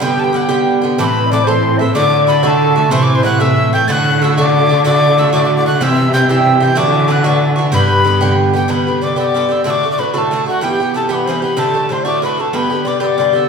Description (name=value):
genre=celtic folk, Celtic jig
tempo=125 BPM (dotted quarters)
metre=6/8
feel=straight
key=G major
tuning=A4 = 440 Hz
part: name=tin whistle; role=melody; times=0.0-13.5 s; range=F#5 to A6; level=-18 LUFS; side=equal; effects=none
part: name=bright wooden flute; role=second line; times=0.0-13.5 s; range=F#4 to G5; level=-18 LUFS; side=left 5 dB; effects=none
part: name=Irish bouzouki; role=accompaniment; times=0.0-13.5 s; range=G2 to B4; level=-15 LUFS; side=right 3 dB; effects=none
part: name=clear cello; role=bass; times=1.0-8.7 s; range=G2 to D3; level=-16 LUFS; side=left 1 dB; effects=none
room=wet large studio reverb, RT60 1.2 s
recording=band playing live in one room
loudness=-11 LUFS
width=side -5 dB against mid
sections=1.0-8.7 A section; 8.7-13.5 B section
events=none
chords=0.0 G; 1.0 Amadd9; 2.0 D; 2.9 Am; 3.9 D; 5.8 C; 6.8 Dadd9; 7.7 G; 9.7 D; 10.6 Em; 11.6 Dsus4; 12.1 D; 12.5 G